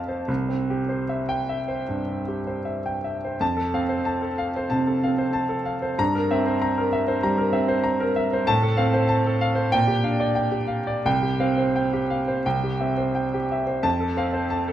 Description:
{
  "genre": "classical, romantic character piece for solo piano",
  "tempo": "75-97 BPM",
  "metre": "4/4",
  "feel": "rubato",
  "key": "F major",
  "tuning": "A4 = 440 Hz",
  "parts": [
    { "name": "clear grand piano", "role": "solo", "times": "0.0-14.7 s", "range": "C2 to Bb5", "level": "-21 LUFS", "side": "equal", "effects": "none" }
  ],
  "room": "moderate recital hall reverb, RT60 1.8 s",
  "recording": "close, detailed microphones, lossy compression artefacts",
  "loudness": "-21 LUFS",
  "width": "side -11 dB against mid",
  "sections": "0.0-3.4 A section; 3.4-14.7 B section",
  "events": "none",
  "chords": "0.3 C; 3.4 F; 6.0 C7/G; 8.5 F/A; 9.7 Gm7/Bb; 11.1 Csus4; 12.4 C; 13.8 F",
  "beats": "| 0.28 1.08 1.88 2.66 | 3.41 4.06 4.71 5.34 | 5.99 6.62 7.24 7.86 | 8.48 9.11 9.73 10.38 | 11.06 11.75 12.45 13.15 | 13.84 14.51"
}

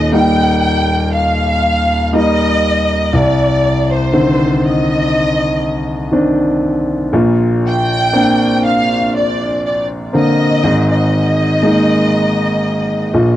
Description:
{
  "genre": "pop",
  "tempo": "60 BPM",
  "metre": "4/4",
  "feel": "straight",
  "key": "Eb major",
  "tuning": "A4 = 440 Hz",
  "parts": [
    { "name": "warm studio violin section", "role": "melody", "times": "0.0-13.4 s", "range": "C5 to G5", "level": "-16 LUFS", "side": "equal", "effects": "cassette tape" },
    { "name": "warm concert grand piano", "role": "accompaniment", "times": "0.0-13.4 s", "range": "Eb1 to Eb4", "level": "-13 LUFS", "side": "equal", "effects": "cassette tape" }
  ],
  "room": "moderate booth ambience, RT60 0.2 s",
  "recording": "home recording on cassette",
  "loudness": "-12 LUFS",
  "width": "side -13 dB against mid",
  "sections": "0.0-13.4 A section",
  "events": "none",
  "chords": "0.0 Eb; 3.1 Cmadd9; 7.1 Bbadd9; 10.6 Absus2",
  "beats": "0.14 1.14 2.14 | 3.14 4.14 5.14 6.14 | 7.14 8.14 9.14 10.14 | 11.14 12.14 13.14"
}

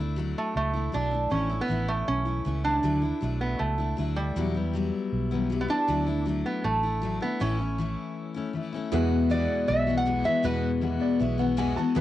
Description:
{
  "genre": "honky-tonk and classic country",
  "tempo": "158 BPM",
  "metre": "4/4",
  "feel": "straight",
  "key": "unclear",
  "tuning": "A4 = 440 Hz",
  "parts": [
    { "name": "picked steel-string acoustic guitar", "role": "accompaniment", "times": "0.0-12.0 s", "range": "E2 to F#4", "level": "-28 LUFS", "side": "left 5 dB", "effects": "cassette tape" },
    { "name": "vintage muted fingered electric bass", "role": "bass", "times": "0.0-12.0 s", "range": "A1 to E2", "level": "-29 LUFS", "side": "right 2 dB", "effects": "none" },
    { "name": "lap resonator guitar", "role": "melody", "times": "0.4-11.2 s", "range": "G3 to F#5", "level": "-29 LUFS", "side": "right 2 dB", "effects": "cassette tape" },
    { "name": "warm concert grand piano", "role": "accompaniment", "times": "8.9-12.0 s", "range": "E4 to A5", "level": "-35 LUFS", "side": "right 9 dB", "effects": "cassette tape" }
  ],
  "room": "moderate booth ambience, RT60 0.2 s",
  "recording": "home recording on cassette",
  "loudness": "-24 LUFS",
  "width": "side -13 dB against mid",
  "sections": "0.0-8.9 A section; 8.9-12.0 B section",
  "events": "break 8.2-8.9; grand piano fill 10.8-12.0",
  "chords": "0.0 Dadd9; 1.3 A; 2.8 Dadd9; 4.4 Emadd9; 5.9 Dadd9; 7.4 A; 8.9 Eadd9",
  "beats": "0.18 0.56 0.94 | 1.32 1.70 2.08 2.46 | 2.84 3.22 3.60 3.98 | 4.36 4.74 5.12 5.51 | 5.89 6.27 6.65 7.03 | 7.41 7.79 8.17 8.55 | 8.93 9.31 9.69 10.07 | 10.45 10.82 11.20 11.58 | 11.96"
}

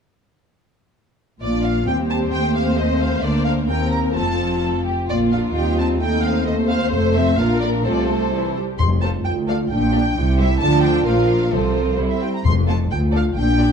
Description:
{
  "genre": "quick classical-period movement for symphony orchestra",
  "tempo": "131 BPM",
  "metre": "2/4",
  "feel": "straight",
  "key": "F major from 6.9 s",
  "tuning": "A4 = 440 Hz",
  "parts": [
    { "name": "warm studio violin section", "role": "melody", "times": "1.4-13.7 s", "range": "C5 to C6", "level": "-26 LUFS", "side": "equal", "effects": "none" },
    { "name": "rich studio viola section", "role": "accompaniment", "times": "1.4-13.7 s", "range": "E3 to C5", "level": "-24 LUFS", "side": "left 1 dB", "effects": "none" },
    { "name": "dark French horn section", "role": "sustained chords", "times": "1.4-13.7 s", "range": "F3 to A4", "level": "-23 LUFS", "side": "equal", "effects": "none" },
    { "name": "rich studio cello section", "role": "bass", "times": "1.4-13.7 s", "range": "D2 to D3", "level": "-24 LUFS", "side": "equal", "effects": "none" },
    { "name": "rich studio double bass section", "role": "bass", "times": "1.4-13.7 s", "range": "F1 to Eb2", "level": "-23 LUFS", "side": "right 1 dB", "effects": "none" },
    { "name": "warm studio violin section", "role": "second line", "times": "1.9-13.7 s", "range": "D4 to D5", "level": "-26 LUFS", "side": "left 1 dB", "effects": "none" },
    { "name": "timpani", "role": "percussion", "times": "8.8-9.2, 11.5-12.9 s", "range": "F2 to C3", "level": "-22 LUFS", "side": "left 3 dB", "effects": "none" }
  ],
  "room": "wet stone room reverb, RT60 1.0 s",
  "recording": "dark, warm production",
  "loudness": "-16 LUFS",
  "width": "side -6 dB against mid",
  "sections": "1.4-8.8 A section; 8.8-13.7 B section",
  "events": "none",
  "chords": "1.4 Bb; 1.9 Cm/Eb; 2.3 F9/Eb; 3.2 Bb/D; 3.7 Cm7/Eb; 4.2 F; 5.1 Bb; 5.6 Cm/Eb; 6.0 F9/Eb; 6.9 F; 7.4 Bb; 7.8 F/C; 8.3 C; 8.8 F; 9.3 Dm; 9.7 Gm/Bb; 10.2 C; 10.6 Dm; 11.1 Bb; 11.5 F/C; 12.0 C; 12.5 F; 12.9 Dm",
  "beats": "| 1.42 1.88 | 2.33 2.78 | 3.23 3.69 | 4.16 4.63 | 5.10 5.56 | 6.01 6.47 | 6.92 7.38 | 7.85 8.32 | 8.79 9.25 | 9.71 10.17 | 10.62 11.07 | 11.53 11.99 | 12.45 12.91 | 13.37"
}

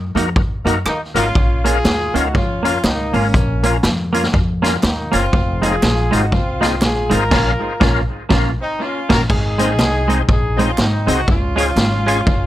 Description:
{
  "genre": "ska",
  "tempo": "121 BPM",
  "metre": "4/4",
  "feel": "swing 60% on 8ths",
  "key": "Bb minor",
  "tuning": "A4 = 440 Hz",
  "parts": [
    { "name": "upright bass", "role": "bass", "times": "0.0-12.5 s", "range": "F1 to Gb2", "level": "-20 LUFS", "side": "equal", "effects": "none" },
    { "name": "semi-hollow electric guitar", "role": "accompaniment", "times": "0.2-12.3 s", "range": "Ab3 to Gb4", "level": "-21 LUFS", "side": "right 3 dB", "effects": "tape echo" },
    { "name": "overdriven tonewheel organ", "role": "stabs", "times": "0.2-12.2 s", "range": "Bb3 to Db5", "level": "-23 LUFS", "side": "left 5 dB", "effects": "chorus vibrato, fast rotary speaker, tape echo, plate reverb" },
    { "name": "street-band drum kit", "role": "drums", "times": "0.2-12.4 s", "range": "crash cymbal, hi-hat, kick drum, rim click, snare drum", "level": "-18 LUFS", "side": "equal", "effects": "tape echo" },
    { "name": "warm horn section", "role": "melody", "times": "0.9-12.5 s", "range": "Bb3 to Bb4", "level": "-21 LUFS", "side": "equal", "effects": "plate reverb" },
    { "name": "group handclap", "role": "percussion", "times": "0.9-11.9 s", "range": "none", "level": "-30 LUFS", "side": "right 3 dB", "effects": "none" }
  ],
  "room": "light reverb",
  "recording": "none",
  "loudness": "-14 LUFS",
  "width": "side -14 dB against mid",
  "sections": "0.0-9.3 A section; 9.3-12.5 B section",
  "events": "band accent 7.3-9.3",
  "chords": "0.0 Ebm; 1.4 Bbm; 5.3 Fm7; 7.3 Bbm; 9.3 Ab; 11.3 Db",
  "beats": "0.36 0.86 | 1.35 1.85 2.35 2.85 | 3.34 3.84 4.33 4.83 | 5.33 5.82 6.32 6.82 | 7.31 7.81 8.30 8.80 | 9.30 9.79 10.29 10.78 | 11.28 11.78 12.27"
}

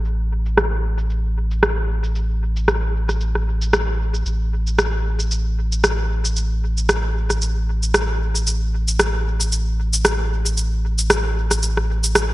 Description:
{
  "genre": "dub techno",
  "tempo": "114 BPM",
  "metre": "4/4",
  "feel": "swing 56% on 16ths",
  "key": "unclear",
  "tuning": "A4 = 438 Hz",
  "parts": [
    { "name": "pure sine sub bass", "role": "bass", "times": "0.0-12.3 s", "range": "A1", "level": "-20 LUFS", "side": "equal", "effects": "none" },
    { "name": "electronic shaker and rim click", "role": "drums", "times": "0.0-12.3 s", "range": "none", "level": "-20 LUFS", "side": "equal", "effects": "low-pass filter on perc, low-pass filter on snare" }
  ],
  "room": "light reverb",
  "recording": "bright 1980s-style digital production",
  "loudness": "-18 LUFS",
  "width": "side -18 dB against mid",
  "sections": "0.0-12.3 A section",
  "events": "filter sweep on drum 0.0-12.3",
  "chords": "none",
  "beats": "| 0.05 0.57 1.10 1.63 | 2.15 2.68 3.21 3.73 | 4.26 4.79 5.31 5.84 | 6.36 6.89 7.42 7.94 | 8.47 8.99 9.52 10.05 | 10.57 11.10 11.63 12.15"
}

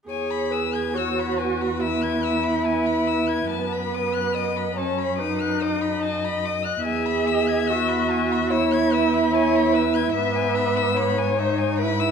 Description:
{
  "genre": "classical, slow romantic movement for string quartet",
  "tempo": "72 BPM",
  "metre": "4/4",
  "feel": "rubato",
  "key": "E major",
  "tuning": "A4 = 435 Hz",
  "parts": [
    { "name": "muted violin", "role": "melody", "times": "0.1-12.1 s", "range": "E5 to G#6", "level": "-29 LUFS", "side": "left 10 dB", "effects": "none" },
    { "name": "muted violin", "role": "second line", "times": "0.1-12.1 s", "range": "B4 to E5", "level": "-27 LUFS", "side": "left 4 dB", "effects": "none" },
    { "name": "muted viola", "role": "accompaniment", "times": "0.1-12.1 s", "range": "B3 to G#4", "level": "-23 LUFS", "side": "right 2 dB", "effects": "none" },
    { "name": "muted cello", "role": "bass", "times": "0.1-12.1 s", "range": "E2 to G#2", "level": "-27 LUFS", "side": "right 3 dB", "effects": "none" }
  ],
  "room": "moderate recital hall reverb, RT60 1.4 s",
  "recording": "minimal, uncompressed stereo recording",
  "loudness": "-20 LUFS",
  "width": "side -6 dB against mid",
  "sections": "0.1-12.1 A section",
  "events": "none",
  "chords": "0.1 E; 3.5 B7/F#; 6.8 E; 10.2 E/G#",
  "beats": "| 0.09 0.95 1.82 2.66 | 3.51 4.35 5.20 6.03 | 6.85 7.69 8.51 9.33 | 10.16 10.99 11.81"
}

